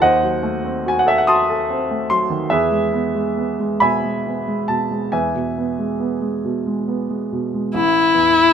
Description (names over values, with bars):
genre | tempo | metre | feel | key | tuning
classical, romantic duo for viola and grand piano | 44-51 BPM (dotted quarters) | 6/8 | rubato | unclear | A4 = 440 Hz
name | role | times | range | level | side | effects
warm grand piano | accompaniment | 0.0-8.5 s | A1 to D#6 | -17 LUFS | right 1 dB | none
rich viola | melody | 7.8-8.5 s | E4 | -12 LUFS | left 3 dB | none
room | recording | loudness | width
moderate studio reverb, RT60 0.9 s | minimal, uncompressed stereo recording | -17 LUFS | side -8 dB against mid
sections
0.0-7.7 A section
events
none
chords
0.0 D#dim7; 2.5 E; 7.7 A5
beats
| 0.01 1.27 | 2.49 3.81 | 5.12 6.44 | 7.74